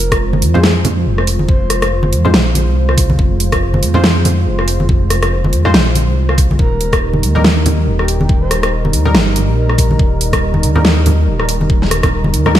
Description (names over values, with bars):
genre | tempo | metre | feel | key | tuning
deep dubstep | 141 BPM | 4/4 | swing 57% on 16ths, half-time | F minor | A4 = 440 Hz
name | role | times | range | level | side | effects
breathy flute-like synth lead | melody | 0.0-2.1, 6.6-10.0 s | G4 to C5 | -26 LUFS | left 1 dB | wide subtle chorus, cassette tape, dub echo
dark analog pad | sustained chords | 0.0-12.6 s | G3 to C5 | -22 LUFS | right 2 dB | chorus, vintage 12-bit sampler grit
dark detuned saw bass | bass | 0.0-12.6 s | Eb1 to F2 | -15 LUFS | equal | none
dubstep drum kit | drums | 0.1-12.6 s | hi-hat, rim click, snare drum | -16 LUFS | equal | overdrive
electronic kick drum | drums | 0.1-12.1 s | none | -14 LUFS | equal | overdrive
congas | percussion | 0.3-12.5 s | none | -20 LUFS | right 1 dB | none
filtered dub chord stab | stabs | 0.5-12.6 s | G3 to C5 | -23 LUFS | left 3 dB | chorus, cassette tape, dub echo
room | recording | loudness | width
light reverb, digital ambience | none | -11 LUFS | side -12 dB against mid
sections
0.0-12.6 A section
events
none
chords
0.0 Fm; 6.6 Eb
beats
0.21 0.64 1.06 | 1.49 1.91 2.34 2.76 | 3.19 3.61 4.04 4.46 | 4.89 5.32 5.74 6.17 | 6.59 7.02 7.44 7.87 | 8.29 8.72 9.15 9.57 | 10.00 10.42 10.85 11.27 | 11.70 12.12 12.55